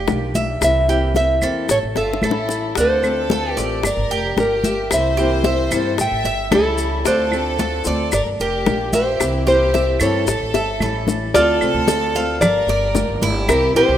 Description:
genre	latin, Cuban son and guajira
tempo	112 BPM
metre	4/4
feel	straight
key	D minor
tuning	A4 = 441 Hz
part	nylon-string guitar	melody	0.0-14.0 s	A4 to G5	-20 LUFS	equal	none
part	Cuban tres	arpeggios	0.0-14.0 s	D4 to F5	-24 LUFS	right 3 dB	none
part	upright bass	bass	0.0-14.0 s	F1 to G2	-24 LUFS	right 1 dB	none
part	fingerpicked steel-string acoustic guitar	accompaniment	0.1-14.0 s	C3 to G4	-26 LUFS	left 4 dB	none
part	bongos	percussion	0.1-13.8 s	none	-26 LUFS	left 8 dB	none
part	congas	percussion	0.1-14.0 s	none	-25 LUFS	left 2 dB	none
part	maracas	percussion	0.1-14.0 s	none	-30 LUFS	left 4 dB	none
part	claves	percussion	0.6-13.8 s	none	-30 LUFS	right 5 dB	none
part	clear studio violin section	second line	1.7-14.0 s	E4 to E5	-25 LUFS	equal	none
room	moderate plate reverb, RT60 3.0 s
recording	rough home demo mix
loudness	-16 LUFS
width	side -10 dB against mid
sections	0.0-11.3 A section; 11.3-14.0 B section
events	drum fill 2.0-2.8, 10.5-11.3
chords	0.0 Gm7; 0.6 C7; 1.7 A7; 2.8 Dm7; 3.8 Gm7; 4.9 C7; 6.0 A7; 7.1 Dm7; 8.1 Gm7; 9.2 C7; 10.3 A7; 11.3 Dm7; 12.4 Gm7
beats	0.08 | 0.62 1.15 1.69 2.23 | 2.76 3.30 3.84 4.37 | 4.91 5.45 5.98 6.52 | 7.05 7.59 8.13 8.66 | 9.20 9.73 10.27 10.81 | 11.34 11.88 12.41 12.95 | 13.49

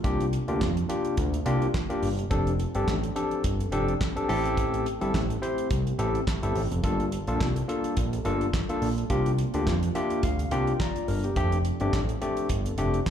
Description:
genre	early-eighties boogie funk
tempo	106 BPM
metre	4/4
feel	swing 56% on 16ths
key	unclear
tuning	A4 = 439 Hz
part	barky tine electric piano	accompaniment	0.0-13.0 s	A3 to Bb5	-28 LUFS	left 2 dB	plate reverb, slapback echo
part	warm analog pad	sustained chords	0.0-13.1 s	C3 to Bb4	-37 LUFS	equal	chorus, plate reverb
part	fat analog bass	bass	0.0-13.0 s	F1 to F2	-27 LUFS	equal	none
part	damped 70s drum kit	drums	0.0-13.1 s	handclaps, hi-hat, kick drum, snare drum	-30 LUFS	right 1 dB	none
room	light reverb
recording	live gig heard through the venue's PA, club reverb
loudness	-24 LUFS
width	side -9 dB against mid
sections	0.0-13.1 A section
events	tine electric piano fill 9.7-11.4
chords	0.0 C9sus4; 2.3 F6; 4.3 Am7; 6.8 Gm9; 9.1 C9sus4; 11.4 F6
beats	| 0.04 0.61 1.18 1.74 | 2.31 2.88 3.44 4.01 | 4.57 5.14 5.71 6.27 | 6.84 7.40 7.97 8.54 | 9.10 9.67 10.23 10.80 | 11.37 11.93 12.50 13.06

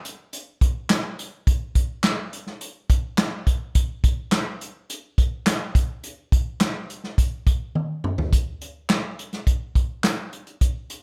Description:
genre	pop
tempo	105 BPM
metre	4/4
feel	straight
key	none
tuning	none
part	unplugged drum kit	drums	0.0-11.0 s	handclaps, hi-hat, kick drum, snare drum, toms	-23 LUFS	equal	none
room	little or no reverb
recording	none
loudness	-24 LUFS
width	mono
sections	0.0-8.3 A section; 8.3-11.0 B section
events	drum fill 7.8-8.3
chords	none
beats	0.33 0.90 | 1.47 2.04 2.61 3.18 | 3.75 4.33 4.90 5.47 | 6.04 6.61 7.18 7.75 | 8.33 8.90 9.47 10.04 | 10.61

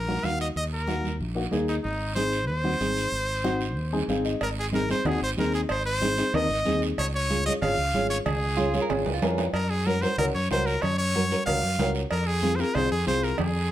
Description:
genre	latin, cumbia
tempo	187 BPM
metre	4/4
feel	straight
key	unclear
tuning	A4 = 439 Hz
part	brilliant trumpet	melody	0.0-13.7 s	Eb4 to F5	-28 LUFS	equal	none
part	fingered electric bass	bass	0.0-13.7 s	Ab1 to Gb2	-29 LUFS	equal	none
part	dark upright piano	accompaniment	0.1-13.3 s	Bb3 to Ab5	-28 LUFS	left 2 dB	none
part	congas	percussion	0.1-13.5 s	none	-34 LUFS	right 4 dB	none
part	guiro	percussion	0.2-13.7 s	none	-39 LUFS	right 6 dB	none
part	cowbell and timbales	percussion	4.4-13.5 s	none	-33 LUFS	right 3 dB	none
part	clean electric guitar	second line	8.6-9.4 s	F4 to Bb4	-31 LUFS	right 6 dB	none
room	moderate studio reverb, RT60 0.8 s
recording	none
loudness	-23 LUFS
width	side -12 dB against mid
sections	0.0-4.4 A section; 4.4-13.7 B section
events	upright piano fill 3.8-4.4; drum fill 8.9-9.5, 13.4-13.7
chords	0.0 Ebm; 1.8 Ab; 7.0 Db; 9.5 Gb; 12.1 Fm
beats	0.23 | 0.56 0.88 1.20 1.52 | 1.84 2.16 2.48 2.81 | 3.13 3.45 3.77 4.09 | 4.41 4.73 5.05 5.37 | 5.70 6.02 6.34 6.66 | 6.98 7.30 7.62 7.94 | 8.26 8.58 8.90 9.22 | 9.54 9.86 10.18 10.50 | 10.82 11.14 11.46 11.79 | 12.11 12.43 12.75 13.07 | 13.39 13.71

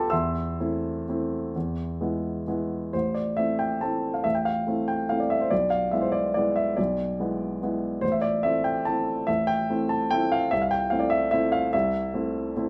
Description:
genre	classical, piano waltz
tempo	116-155 BPM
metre	3/4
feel	rubato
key	A minor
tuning	A4 = 442 Hz
part	warm grand piano	solo	0.0-12.7 s	A1 to E6	-26 LUFS	equal	none
room	moderate large studio reverb, RT60 0.9 s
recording	none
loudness	-26 LUFS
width	mono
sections	0.0-2.9 A section; 2.9-12.7 B section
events	none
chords	0.1 Am/E; 1.6 E; 2.9 Am; 5.5 E7/B; 8.0 Am; 10.5 Am/C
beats	| 0.11 0.59 1.09 | 1.55 2.00 2.47 | 2.94 3.38 3.82 | 4.25 4.67 5.09 | 5.51 5.92 6.36 | 6.78 7.20 7.62 | 8.03 8.44 8.86 | 9.28 9.69 10.11 | 10.52 10.91 11.33 | 11.74 12.13 12.55

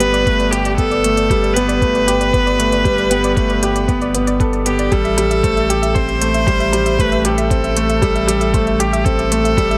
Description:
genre	piano and strings electronica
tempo	116 BPM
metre	4/4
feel	straight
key	A minor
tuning	A4 = 443 Hz
part	clear viola	melody	0.0-9.8 s	G4 to C5	-20 LUFS	equal	none
part	soft round pluck	arpeggios	0.0-9.8 s	G4 to E5	-29 LUFS	equal	chorus, sidechain pumping, digital delay
part	clear baby grand piano	riff	0.0-9.8 s	G3 to A4	-20 LUFS	equal	none
part	round analog bass	bass	0.0-9.8 s	G1 to A1	-24 LUFS	equal	sidechain pumping
part	electronic hi-hat	drums	0.0-9.8 s	none	-26 LUFS	equal	none
part	electronic kick drum	drums	0.3-9.7 s	none	-22 LUFS	equal	none
room	light reverb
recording	none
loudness	-16 LUFS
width	mono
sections	0.0-9.8 A section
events	none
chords	0.0 Gadd9; 4.9 Am7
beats	0.26 | 0.78 1.30 1.82 2.33 | 2.85 3.37 3.88 4.40 | 4.92 5.44 5.95 6.47 | 6.99 7.50 8.02 8.54 | 9.06 9.57

